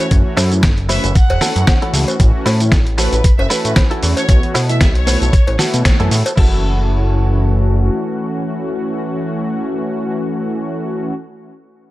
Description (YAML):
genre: nu-disco, nu disco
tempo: 115 BPM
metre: 4/4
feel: swing 56% on 16ths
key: F# minor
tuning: A4 = 442 Hz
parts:
  - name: rich studio violin section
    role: melody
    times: 0.0-5.5 s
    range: B4 to F#5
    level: -24 LUFS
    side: right 1 dB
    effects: vintage 12-bit sampler grit, analog delay
  - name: mellow synth brass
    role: accompaniment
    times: 0.0-11.1 s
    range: E3 to G#4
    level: -21 LUFS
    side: left 1 dB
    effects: chorus, analog delay
  - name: direct-recorded clean electric guitar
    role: riff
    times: 0.0-11.2 s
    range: B3 to B4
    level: -24 LUFS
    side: right 2 dB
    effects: analog chorus
  - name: dusty soul sampler-style drum kit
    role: drums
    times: 0.0-6.5 s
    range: crash cymbal, finger snaps, hi-hat, shaker, snare drum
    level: -20 LUFS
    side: equal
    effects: none
  - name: cowbell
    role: percussion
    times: 0.0-6.4 s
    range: none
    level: -24 LUFS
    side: left 1 dB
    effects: none
  - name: fat analog bass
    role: bass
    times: 0.1-7.9 s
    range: E1 to B2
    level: -15 LUFS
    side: equal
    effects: none
  - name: electronic kick drum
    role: drums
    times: 0.1-6.5 s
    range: none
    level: -12 LUFS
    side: equal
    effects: none
room: digital ambience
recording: none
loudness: -13 LUFS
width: side -17 dB against mid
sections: 0.0-6.4 A section; 6.4-10.5 B section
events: drop 0.0-6.4; band accent 5.9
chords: 0.0 F#m7; 2.2 A6; 4.3 B7sus4; 6.4 F#m7